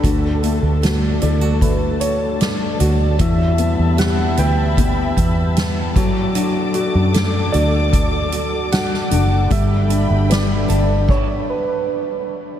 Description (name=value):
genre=pop ballad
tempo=76 BPM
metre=4/4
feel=straight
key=D major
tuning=A4 = 445 Hz
part: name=felt-muted upright piano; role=accompaniment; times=0.0-11.1 s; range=D3 to B4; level=-22 LUFS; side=left 4 dB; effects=none
part: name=muted studio string section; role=sustained chords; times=0.0-11.1 s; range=G3 to D6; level=-26 LUFS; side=left 2 dB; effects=none
part: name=nylon-string guitar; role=arpeggios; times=0.0-11.7 s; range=E2 to A4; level=-27 LUFS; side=right 6 dB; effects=tape echo
part: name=vintage muted fingered electric bass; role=bass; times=0.0-11.1 s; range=F#1 to F#2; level=-18 LUFS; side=equal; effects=none
part: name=soft-mallet drum kit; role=drums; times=0.0-11.3 s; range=crash cymbal, hi-hat, kick drum, snare drum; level=-21 LUFS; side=equal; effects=none
part: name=soft struck synth lead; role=melody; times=1.2-12.3 s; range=B4 to G5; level=-25 LUFS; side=right 2 dB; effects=chorus, tape echo
room=moderate huge ambient reverb, RT60 8.7 s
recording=dreamy mix soaked in reverb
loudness=-15 LUFS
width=side -10 dB against mid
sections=0.0-12.6 A section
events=stop 11.1-12.6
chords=0.0 D; 3.2 Emadd9; 6.0 D; 9.5 Gadd9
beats=| 0.03 0.82 1.61 2.40 | 3.19 3.98 4.77 5.56 | 6.35 7.14 7.93 8.72 | 9.51 10.30 11.09 11.88